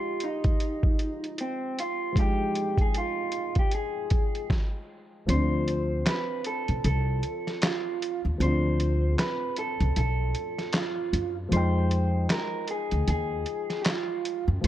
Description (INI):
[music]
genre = lo-fi hip hop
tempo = 77 BPM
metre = 4/4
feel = swing 60% on 16ths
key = unclear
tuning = A4 = 440 Hz
[part]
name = electric guitar through a small old amp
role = melody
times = 0.0-14.4 s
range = C4 to C5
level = -31 LUFS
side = right 2 dB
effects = low-pass filter
[part]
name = dark upright piano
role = accompaniment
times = 0.0-14.7 s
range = F3 to G5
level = -33 LUFS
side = left 2 dB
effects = low-pass filter
[part]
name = lo-fi sampler-style drum kit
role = drums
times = 0.2-14.7 s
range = handclaps, hi-hat, kick drum, snare drum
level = -27 LUFS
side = equal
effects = overdrive, vintage 12-bit sampler grit
[part]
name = upright bass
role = bass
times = 5.3-14.7 s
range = B1 to F#2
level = -25 LUFS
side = equal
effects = none
[sound]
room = studio reverb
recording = none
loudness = -25 LUFS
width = side -12 dB against mid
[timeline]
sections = 0.0-5.3 A section; 5.3-14.7 B section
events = stop 4.5-5.3; kick muted 5.3-14.7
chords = 0.0 Fm9; 5.3 Dm7; 11.5 Fm9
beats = 0.60 1.38 | 2.16 2.94 3.72 4.50 | 5.28 6.06 6.84 7.62 | 8.40 9.18 9.96 10.73 | 11.51 12.29 13.07 13.85 | 14.63